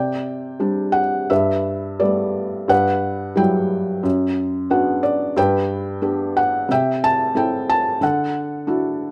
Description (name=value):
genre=classical, lyrical solo piano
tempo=85-93 BPM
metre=4/4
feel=rubato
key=G major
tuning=A4 = 439 Hz
part: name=felt-muted upright piano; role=solo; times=0.0-9.1 s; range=F#2 to A5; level=-20 LUFS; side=equal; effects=none
room=light reverb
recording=none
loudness=-20 LUFS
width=mono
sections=0.0-9.1 A section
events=felt piano fill 4.4-5.4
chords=0.0 Csus2; 1.3 Gadd9; 2.7 Emadd9/G; 4.0 Bm/F#; 5.4 G; 6.7 C6; 8.0 Dadd9